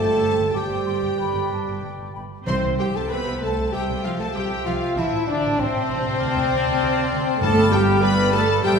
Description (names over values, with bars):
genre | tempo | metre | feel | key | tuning
quick classical-period movement for symphony orchestra | 92-100 BPM | 4/4 | rubato | unclear | A4 = 439 Hz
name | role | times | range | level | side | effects
dark studio violin section | melody | 0.0-8.8 s | C5 to C6 | -32 LUFS | left 3 dB | none
clear studio violin section | second line | 0.0-8.8 s | C5 to C6 | -32 LUFS | left 2 dB | none
mellow hollow small flute group | second line | 0.0-8.8 s | G5 to D6 | -31 LUFS | left 2 dB | none
warm clarinet | second line | 0.0-8.8 s | B4 to D5 | -34 LUFS | left 2 dB | none
warm oboe | second line | 0.0-8.8 s | D5 to F5 | -34 LUFS | equal | none
dark studio viola section | accompaniment | 0.0-8.8 s | C4 to C5 | -29 LUFS | right 1 dB | none
clear French horn section | sustained chords | 0.0-8.8 s | C4 to C5 | -23 LUFS | equal | none
warm studio cello section | bass | 0.0-8.8 s | C3 to C4 | -28 LUFS | right 1 dB | none
timpani | percussion | 0.0-3.4, 7.4-8.3 s | G2 to C3 | -28 LUFS | left 1 dB | none
dark studio double bass section | bass | 0.1-8.8 s | G1 to D2 | -28 LUFS | right 2 dB | none
room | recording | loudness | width
wet concert hall reverb, RT60 2.3 s | heard from further back in the room | -19 LUFS | side -6 dB against mid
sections
0.0-8.8 A section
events
none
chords
0.0 Gsus4; 1.2 G; 2.5 C; 5.0 Am; 6.2 Dm7; 7.4 G7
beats
0.54 1.18 1.83 | 2.47 3.11 3.73 4.35 | 4.97 5.59 6.19 6.80 | 7.41 8.02 8.64